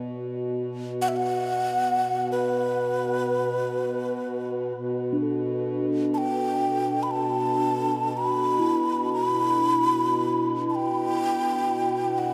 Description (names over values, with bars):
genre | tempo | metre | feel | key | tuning
world meditative, free-time meditation music | free time | none | none | B minor | A4 = 440 Hz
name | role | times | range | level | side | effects
hand-pumped harmonium | drone | 0.0-12.3 s | B2 | -32 LUFS | equal | none
bronze singing bowl | texture | 0.0-12.3 s | B3 to A4 | -32 LUFS | equal | none
breathy mellow xiao | melody | 1.0-12.3 s | B4 to B5 | -28 LUFS | equal | none
room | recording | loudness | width
wet huge ambient reverb, RT60 7.9 s | in a vast, echoing space | -25 LUFS | mono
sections
0.0-4.7 A section; 4.7-12.3 A section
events
none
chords
none